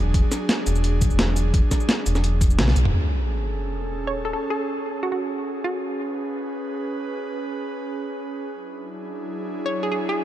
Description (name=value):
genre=liquid drum and bass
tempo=172 BPM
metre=4/4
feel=straight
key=A major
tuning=A4 = 441 Hz
part: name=airy breathy pad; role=sustained chords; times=0.0-10.2 s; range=F#3 to B4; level=-28 LUFS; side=right 2 dB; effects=chorus, sidechain pumping
part: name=sub bass with octave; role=bass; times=0.0-2.9 s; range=E1 to B1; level=-21 LUFS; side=equal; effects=none
part: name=breakbeat sampler-style drum kit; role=drums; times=0.1-2.9 s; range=hi-hat, shaker, snare drum, toms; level=-25 LUFS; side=equal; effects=overdrive
part: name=electronic kick drum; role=drums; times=0.1-2.5 s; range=none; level=-20 LUFS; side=equal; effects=overdrive
part: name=sub drop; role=sound effects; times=2.9-4.3 s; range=none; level=-26 LUFS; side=equal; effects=none
part: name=hollow square pluck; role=melody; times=4.1-6.1, 9.7-10.2 s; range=F#4 to C#5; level=-28 LUFS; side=equal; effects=chorus, dub echo
room=light reverb, digital ambience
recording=dark, warm production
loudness=-22 LUFS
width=side -13 dB against mid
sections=0.0-2.9 A section; 2.9-10.2 B section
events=drop 0.0-2.9; kick drops out 2.6-2.9; drum fill 2.6-2.9; band accent 2.6; impact 2.9-4.3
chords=0.0 E9; 2.9 Amaj7; 8.5 E9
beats=| 0.14 0.49 0.84 1.19 | 1.54 1.89 2.24 2.59 | 2.94 3.28 3.63 3.98 | 4.33 4.68 5.03 5.38 | 5.73 6.08 6.42 6.77 | 7.12 7.47 7.82 8.17 | 8.52 8.87 9.21 9.56 | 9.91